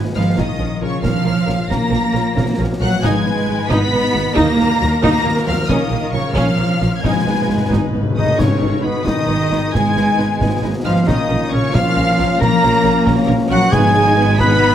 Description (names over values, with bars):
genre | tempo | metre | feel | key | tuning
cinematic, heroic adventure film score | 90 BPM (dotted quarters) | 6/8 | straight | G# dorian | A4 = 439 Hz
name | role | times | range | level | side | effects
concert harp | arpeggios | 0.0-14.7 s | G#2 to D#6 | -24 LUFS | left 8 dB | none
warm symphonic violin section | melody | 0.1-14.7 s | B5 to B6 | -26 LUFS | left 2 dB | none
warm symphonic violin section | second line | 0.2-14.7 s | B4 to B5 | -24 LUFS | left 3 dB | none
warm symphonic viola section | accompaniment | 0.2-14.7 s | E#3 to B4 | -23 LUFS | right 1 dB | none
rich symphonic cello section | bass | 0.2-14.7 s | B2 to B3 | -20 LUFS | right 2 dB | none
warm symphonic double bass section | bass | 0.2-14.7 s | G#1 to D#2 | -21 LUFS | right 3 dB | none
concert snare drum, concert bass drum and clash cymbals | drums | 0.4-14.6 s | none | -23 LUFS | equal | none
timpani | percussion | 4.4-5.0, 7.0-9.0, 13.7-14.3 s | G#2 to D#3 | -23 LUFS | left 2 dB | none
silver concert flute | second line | 8.2-14.7 s | B4 to B5 | -23 LUFS | left 1 dB | none
warm clarinet | second line | 8.2-14.7 s | B3 to B4 | -24 LUFS | right 1 dB | none
mellow trumpet section | stabs | 8.2-14.7 s | B4 to B5 | -22 LUFS | right 3 dB | none
mellow French horn section | sustained chords | 8.4-14.7 s | A#3 to D#4 | -24 LUFS | left 4 dB | none
room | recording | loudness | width
light reverb | none | -13 LUFS | side -10 dB against mid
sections
0.0-8.4 A section; 8.4-14.7 B section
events
timpani fill 7.0-8.4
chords
0.4 A#m; 3.0 G#m; 4.4 D#m; 5.7 A#m; 7.0 G#m; 11.1 A#m; 13.7 G#m